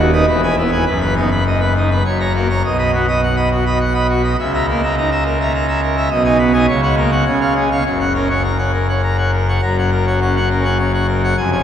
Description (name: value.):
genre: classical, organ toccata.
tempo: 103 BPM.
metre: 3/4.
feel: straight.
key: F# major from 6.1 s.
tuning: A4 = 440 Hz.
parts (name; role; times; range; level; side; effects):
pipe organ, full organ; solo; 0.0-11.6 s; D#1 to B5; -14 LUFS; equal; none.
room: wet cathedral reverb, RT60 4.6 s.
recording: heard from further back in the room.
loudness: -14 LUFS.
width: side -9 dB against mid.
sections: 0.0-9.6 A section; 9.6-11.6 B section.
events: none.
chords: 0.3 E; 0.9 B/F#; 2.0 F#; 2.6 B; 4.4 A#dim/C#; 6.1 G#m/B; 6.7 F#/C#; 7.3 C#; 7.9 F#.